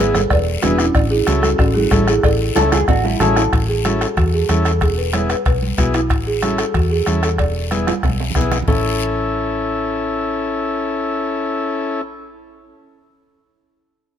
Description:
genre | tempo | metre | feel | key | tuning
latin, cumbia | 186 BPM | 4/4 | straight | A major | A4 = 438 Hz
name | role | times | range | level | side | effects
folk marimba with soft mallets | melody | 0.0-12.7 s | C#4 to D5 | -20 LUFS | right 2 dB | none
combo organ | accompaniment | 0.0-12.0 s | B3 to A4 | -22 LUFS | left 3 dB | none
hollow-body short-scale fingered electric bass | bass | 0.0-12.7 s | E1 to E2 | -20 LUFS | equal | none
bombo | percussion | 0.1-8.8 s | none | -20 LUFS | left 1 dB | none
guiro | percussion | 0.1-8.8 s | none | -30 LUFS | left 7 dB | none
congas | percussion | 0.2-8.8 s | none | -25 LUFS | right 2 dB | none
cowbell and timbales | percussion | 0.3-8.8 s | none | -27 LUFS | right 7 dB | none
mellow electric guitar | second line | 2.6-3.5 s | E4 to A4 | -21 LUFS | left 1 dB | none
room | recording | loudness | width
moderate plate reverb, RT60 2.5 s | minimal, uncompressed stereo recording | -15 LUFS | side -9 dB against mid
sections
0.0-3.5 A section; 3.5-8.7 B section; 8.7-11.3 C section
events
drum fill 2.6-3.5, 7.9-8.7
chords
0.0 E7; 1.0 A; 4.8 E; 6.1 A; 7.4 E7; 8.7 A

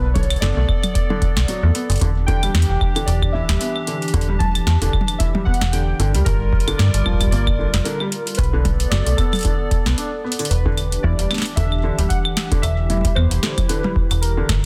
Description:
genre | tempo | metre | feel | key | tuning
IDM | 113 BPM | 4/4 | swing 56% on 16ths | E minor | A4 = 440 Hz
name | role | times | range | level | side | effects
warbly lo-fi synth keys | melody | 0.0-14.6 s | A4 to A5 | -31 LUFS | equal | chorus, phaser, delay
hollow soft pad | sustained chords | 0.0-14.7 s | E3 to D5 | -31 LUFS | equal | chorus
felt-muted upright piano | arpeggios | 0.0-14.5 s | D3 to D4 | -30 LUFS | equal | vintage 12-bit sampler grit, delay
metallic FM bass | bass | 0.0-14.7 s | D1 to G2 | -21 LUFS | equal | none
booming analog drum machine | drums | 0.2-14.6 s | claves, hi-hat, snare drum, toms | -27 LUFS | equal | none
electronic kick drum | drums | 0.2-14.6 s | none | -23 LUFS | equal | none
room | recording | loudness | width
little or no reverb | dense, heavily limited modern master | -19 LUFS | mono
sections
0.0-10.5 A section; 10.5-14.7 A section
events
break 10.0-10.5; drum fill 10.2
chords
0.0 Bm7; 2.0 Em7; 6.0 Gm7; 8.4 Bm7; 10.5 Em7

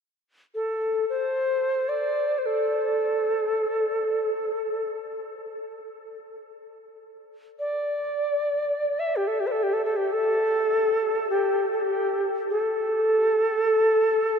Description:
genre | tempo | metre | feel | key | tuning
world meditative, free-time meditation music | free time | none | none | A minor pentatonic | A4 = 440 Hz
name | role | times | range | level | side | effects
reedy Native American-style cedar flute | solo | 0.5-14.4 s | G4 to E5 | -23 LUFS | equal | ping-pong delay
room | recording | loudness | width
wet huge ambient reverb, RT60 7.7 s | dreamy mix soaked in reverb | -22 LUFS | side -6 dB against mid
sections
0.0-14.4 A section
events
none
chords
none

